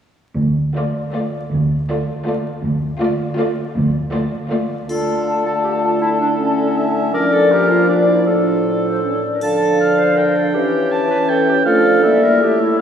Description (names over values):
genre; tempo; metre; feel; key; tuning
cinematic, playful, whimsical film cue; 160 BPM; 3/4; straight; D minor; A4 = 441 Hz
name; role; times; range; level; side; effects
dark chamber cello section; bass; 0.4-4.1 s; D2; -20 LUFS; right 1 dB; none
dark studio violin section; melody; 0.8-4.8 s; D5; -30 LUFS; left 4 dB; none
dark studio violin section; second line; 0.8-4.8 s; F4; -26 LUFS; equal; none
rich studio viola section; accompaniment; 0.8-4.8 s; A3; -25 LUFS; equal; none
clear clarinet; second line; 4.9-12.8 s; C#4 to C5; -20 LUFS; right 1 dB; none
mellow hollow flute section; second line; 4.9-12.8 s; C5 to A5; -22 LUFS; left 3 dB; none
warm cor anglais; second line; 4.9-12.8 s; A4 to A5; -21 LUFS; right 2 dB; none
mellow bassoon; accompaniment; 4.9-12.8 s; A2 to A3; -19 LUFS; left 1 dB; none
dark French horn section; sustained chords; 4.9-12.8 s; E3 to F4; -19 LUFS; equal; none
triangle; percussion; 4.9-5.6, 9.4-10.1 s; none; -40 LUFS; left 2 dB; none
room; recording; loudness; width
wet church reverb, RT60 2.8 s; recorded in a church or concert hall, vinyl crackle, studio ambience; -14 LUFS; side -8 dB against mid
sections
0.4-4.9 A section; 4.9-12.8 B section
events
none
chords
0.4 Dm; 6.0 A/D; 7.1 Bb; 8.3 Dm/A; 9.0 A; 9.4 Dm; 10.5 C#dim/E; 11.7 Dm/F; 12.0 Edim/G; 12.4 A7